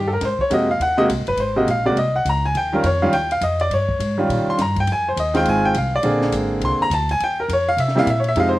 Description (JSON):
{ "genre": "jazz piano trio", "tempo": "206 BPM", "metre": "4/4", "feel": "swing 61% on 8ths", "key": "Eb mixolydian", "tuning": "A4 = 440 Hz", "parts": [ { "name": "clear baby grand piano", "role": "melody", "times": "0.0-8.6 s", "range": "C3 to C6", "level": "-18 LUFS", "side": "equal", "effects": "slapback echo" }, { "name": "upright bass", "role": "bass", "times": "0.0-8.6 s", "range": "Gb1 to C3", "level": "-24 LUFS", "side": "equal", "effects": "none" }, { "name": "compact cocktail drum kit", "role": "drums", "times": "0.2-8.4 s", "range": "hi-hat, kick drum, ride cymbal, snare drum", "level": "-32 LUFS", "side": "left 1 dB", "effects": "none" } ], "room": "little or no reverb", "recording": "recorded outdoors, with no room sound", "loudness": "-17 LUFS", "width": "side -16 dB against mid", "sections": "0.0-8.6 A section", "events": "grand piano solo 0.0-8.6", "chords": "0.2 Ab9; 2.6 Eb9; 4.9 Fm7; 6.0 Bb9; 7.2 Ebsus2; 7.8 C7" }